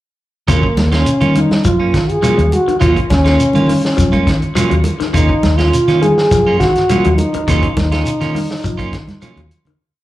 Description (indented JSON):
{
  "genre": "afrobeat",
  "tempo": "103 BPM",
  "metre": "4/4",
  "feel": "straight",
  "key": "Eb minor",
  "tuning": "A4 = 437 Hz",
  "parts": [
    { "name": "trombone with bucket mute", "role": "melody", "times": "0.5-9.5 s", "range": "Bb3 to Ab4", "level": "-16 LUFS", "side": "equal", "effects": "slapback echo" },
    { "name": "electric guitar through a small old amp", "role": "arpeggios", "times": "0.5-9.8 s", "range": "Bb2 to Gb3", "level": "-23 LUFS", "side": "left 6 dB", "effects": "slapback echo" },
    { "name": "electric guitar at the edge of break-up", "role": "stabs", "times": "0.5-9.4 s", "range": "Gb3 to F4", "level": "-21 LUFS", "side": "right 5 dB", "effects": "vibrato effect, slapback echo" },
    { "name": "fingered electric bass", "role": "bass", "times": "0.5-9.7 s", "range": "Eb2 to Eb3", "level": "-15 LUFS", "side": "equal", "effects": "none" },
    { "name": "warm soul drum kit", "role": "drums", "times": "0.5-9.8 s", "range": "hi-hat, kick drum, snare drum", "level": "-21 LUFS", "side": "equal", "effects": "none" },
    { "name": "shekere", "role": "percussion", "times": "0.5-9.7 s", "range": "none", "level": "-21 LUFS", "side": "equal", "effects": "none" },
    { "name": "congas", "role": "percussion", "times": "0.8-9.8 s", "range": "none", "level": "-21 LUFS", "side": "right 2 dB", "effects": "none" }
  ],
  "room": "light reverb, small room ambience",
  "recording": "live gig heard through the venue's PA, club reverb",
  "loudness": "-11 LUFS",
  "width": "side -15 dB against mid",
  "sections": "0.5-9.8 groove",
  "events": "fade-out 7.5-9.8; drum fill 9.1-9.8",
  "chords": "0.5 Ebm9"
}